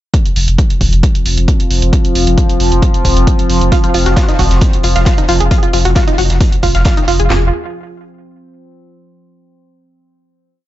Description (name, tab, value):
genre	driving peak-time techno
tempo	134 BPM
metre	4/4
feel	straight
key	unclear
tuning	A4 = 440 Hz
part	analog drone	drone	0.9-7.3 s	F3 to C4	-19 LUFS	left 1 dB	chorus, sidechain pumping
part	electronic hi-hat	drums	0.1-7.3 s	none	-22 LUFS	right 3 dB	sidechain pumping on hats
part	techno drum kit	drums	0.1-7.4 s	handclaps, kick drum, snare drum, toms	-12 LUFS	equal	none
part	saturated sub bass	bass	0.4-7.5 s	F1	-13 LUFS	equal	sidechain pumping, low-pass filter
part	analog pluck	riff	3.7-7.5 s	Eb4 to F5	-17 LUFS	right 1 dB	chorus, sidechain pumping, tape echo
part	crunchy breakbeat drum kit	drums	3.7-7.2 s	hi-hat, snare drum	-27 LUFS	equal	high-pass filter on hats, high-pass filter on snare, high-pass filter on room, tape echo
room	digital ambience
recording	echo-heavy mix, nothing above 7.8 kHz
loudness	-9 LUFS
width	side -14 dB against mid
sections	0.1-7.3 groove; 7.3-9.1 final chord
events	none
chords	0.1 F5; 7.3 N.C.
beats	| 0.14 0.58 1.03 1.48 | 1.93 2.38 2.82 3.27 | 3.72 4.17 4.62 5.06 | 5.51 5.96 6.41 6.85 | 7.30